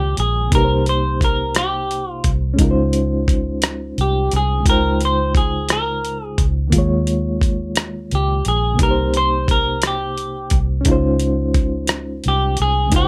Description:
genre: slow six-eight R&B.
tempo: 58 BPM (dotted quarters).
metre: 6/8.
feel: straight.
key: unclear.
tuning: A4 = 439 Hz.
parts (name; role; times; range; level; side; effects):
semi-hollow electric guitar; melody; 0.0-13.1 s; G4 to C5; -22 LUFS; equal; lush chorus.
overdriven reed electric piano; accompaniment; 0.0-13.1 s; C3 to G5; -25 LUFS; equal; fast tremolo.
vintage muted fingered electric bass; bass; 0.0-13.1 s; Bb1 to Eb2; -23 LUFS; equal; none.
dusty soul sampler-style drum kit; drums; 0.2-13.1 s; hi-hat, kick drum, rim click; -21 LUFS; equal; none.
room: little or no reverb.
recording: none.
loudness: -18 LUFS.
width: mono.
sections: 0.0-13.1 A section.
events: none.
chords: 0.0 Eb9sus4; 0.5 Cm7; 2.6 Dbmaj9; 4.7 Dbmaj9#11; 6.7 Eb9sus4; 8.8 Cm7; 10.9 Dbmaj9.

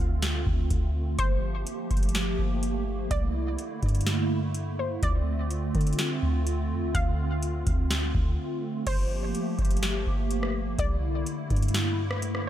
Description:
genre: hip hop, atmospheric cloud-rap.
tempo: 125 BPM.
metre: 4/4.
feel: half-time.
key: G dorian.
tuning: A4 = 440 Hz.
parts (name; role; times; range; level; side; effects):
warbly dusty pluck; melody; 0.0-12.4 s; C5 to F5; -37 LUFS; left 1 dB; chorus, digital delay.
hollow soft pad; sustained chords; 0.0-12.5 s; D3 to G4; -31 LUFS; right 1 dB; ensemble chorus, sidechain pumping.
soft 808-style bass; bass; 0.0-12.5 s; G1 to D3; -28 LUFS; equal; none.
booming analog drum machine; drums; 0.2-12.5 s; crash cymbal, hi-hat, kick drum, rim click, snare drum; -29 LUFS; equal; none.
room: digital ambience.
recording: none.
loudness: -25 LUFS.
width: side -12 dB against mid.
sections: 0.0-8.9 A section; 8.9-12.5 B section.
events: break 8.4-8.9.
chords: 0.0 Dm7; 1.2 Gm9; 3.1 C13; 5.0 Dm7; 8.9 Gm9; 10.8 C13.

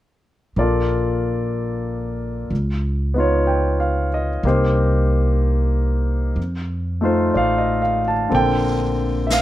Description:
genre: jazz ballad.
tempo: 62 BPM.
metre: 4/4.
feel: swing 67% on 8ths.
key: Bb major.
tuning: A4 = 440 Hz.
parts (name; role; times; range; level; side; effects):
clear concert grand piano; accompaniment; 0.6-9.4 s; D3 to A5; -20 LUFS; left 1 dB; none.
upright bass; bass; 0.6-9.4 s; A1 to F2; -21 LUFS; equal; none.
jazz brush drum kit; drums; 8.3-9.4 s; brushed snare drum, hi-hat, snare drum; -26 LUFS; right 1 dB; none.
room: light reverb.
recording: none.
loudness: -17 LUFS.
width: side -14 dB against mid.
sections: 0.6-8.3 A section; 8.3-9.4 B section.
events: none.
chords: 0.6 Bbmaj7; 2.5 Db9; 4.4 Cm7; 6.4 F7; 8.3 Bbmaj9.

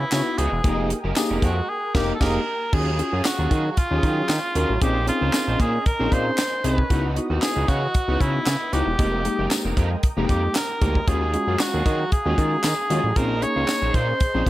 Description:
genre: early-eighties boogie funk.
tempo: 115 BPM.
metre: 4/4.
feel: straight.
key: unclear.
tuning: A4 = 439 Hz.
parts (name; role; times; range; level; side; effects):
warm cor anglais; melody; 0.0-14.5 s; Fb4 to Db5; -26 LUFS; equal; none.
warm analog pad; sustained chords; 0.0-14.5 s; Ab4 to Eb6; -37 LUFS; equal; none.
electric guitar at the edge of break-up; riff; 0.0-14.5 s; Fb3 to C5; -32 LUFS; right 4 dB; ensemble chorus.
fat analog bass; bass; 0.0-14.5 s; Fb1 to Eb3; -24 LUFS; equal; none.
tine electric piano; accompaniment; 0.1-14.5 s; Gb3 to Bb4; -27 LUFS; left 2 dB; slow stereo tremolo.
tight funk drum kit; drums; 0.1-14.5 s; crash cymbal, handclaps, hi-hat, kick drum, snare drum; -23 LUFS; equal; gated reverb.
tambourine; percussion; 0.1-13.8 s; none; -33 LUFS; left 8 dB; none.
room: light reverb, studio ambience.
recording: none.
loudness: -19 LUFS.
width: side -16 dB against mid.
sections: 0.0-2.7 A section; 2.7-14.5 B section.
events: cor anglais solo 0.0-2.7; band accent 1.7-2.7.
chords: 0.0 Dbm11; 0.6 Fm11; 2.7 Ebm11; 4.8 Bbm11; 6.9 Dbm11; 9.0 Fm11; 11.1 Ebm11; 13.2 Bbm11.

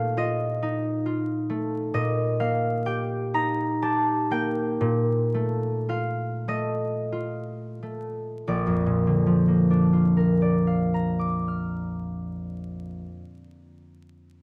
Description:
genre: classical, solo harp piece.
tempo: 28-46 BPM (dotted quarters).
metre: 6/8.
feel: rubato.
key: Bb major.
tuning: A4 = 440 Hz.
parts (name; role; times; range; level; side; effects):
concert harp; solo; 0.0-13.6 s; Bb1 to F6; -26 LUFS; equal; none.
room: moderate concert hall reverb, RT60 1.9 s.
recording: close, detailed microphones, vinyl crackle.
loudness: -25 LUFS.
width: mono.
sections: 0.0-8.5 A section; 8.5-12.1 B section.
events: slowing down 0.6-8.5.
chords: 0.0 F7/Bb; 1.9 Eb/Bb; 8.5 Bb.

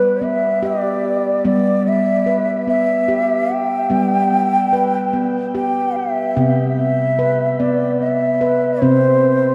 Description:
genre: world meditative, meditative tuned percussion.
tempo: 73 BPM.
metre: 3/4.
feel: straight.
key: G major.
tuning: A4 = 440 Hz.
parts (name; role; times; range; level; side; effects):
mellow bansuri; melody; 0.0-9.5 s; B4 to G5; -20 LUFS; equal; shimmer reverb, analog delay.
handpan; arpeggios; 0.0-9.5 s; C3 to B4; -20 LUFS; equal; shimmer reverb, analog delay.
room: wet lush hall reverb, RT60 3.0 s.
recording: dreamy mix soaked in reverb.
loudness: -17 LUFS.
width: mono.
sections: 0.0-6.4 A section; 6.4-9.5 B section.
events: none.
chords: 0.0 G; 6.4 C.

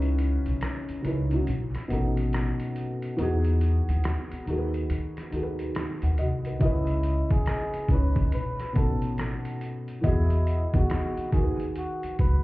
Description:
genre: lo-fi hip hop.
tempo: 70 BPM.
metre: 4/4.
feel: swing 63% on 16ths.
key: C# minor.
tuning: A4 = 441 Hz.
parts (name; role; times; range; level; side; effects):
felt-muted upright piano; accompaniment; 0.0-12.4 s; B2 to F#5; -29 LUFS; equal; cassette tape, low-pass filter.
upright bass; bass; 0.0-12.4 s; A1 to D#3; -27 LUFS; equal; none.
lo-fi sampler-style drum kit; drums; 0.0-12.4 s; hi-hat, kick drum, rim click; -28 LUFS; equal; none.
breathy flugelhorn; melody; 6.6-12.4 s; E4 to B4; -34 LUFS; equal; low-pass filter.
room: light reverb.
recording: heard muffled through a wall, club reverb, EQ.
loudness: -24 LUFS.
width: side -19 dB against mid.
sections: 0.0-12.4 A section.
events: break 0.0-6.6.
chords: 0.0 C#m9; 1.5 B7; 3.2 Emaj7; 4.5 G#m7/D#; 6.6 C#m9; 8.3 B7; 10.0 Emaj7; 11.3 G#m7.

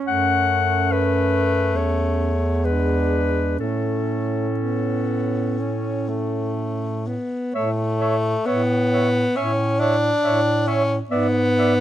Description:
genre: classical, lyrical piece for single-reed quartet.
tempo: 59-72 BPM.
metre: 4/4.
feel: rubato.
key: A major.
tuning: A4 = 440 Hz.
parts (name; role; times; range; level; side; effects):
clear alto saxophone; second line; 0.0-11.7 s; C#4 to D5; -28 LUFS; right 7 dB; none.
clear clarinet; melody; 0.1-11.7 s; A4 to F#5; -25 LUFS; left 6 dB; none.
clear tenor saxophone; accompaniment; 0.1-11.8 s; G#3 to D4; -23 LUFS; left 2 dB; none.
warm bass clarinet; bass; 0.1-11.8 s; E2 to A2; -23 LUFS; right 2 dB; none.
room: light reverb.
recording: close, detailed microphones.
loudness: -19 LUFS.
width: side -12 dB against mid.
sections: 0.0-7.6 A section; 7.6-11.8 B section.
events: none.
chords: 0.1 F#m; 1.8 A/E; 2.6 E7; 3.6 A; 11.1 E7/G#.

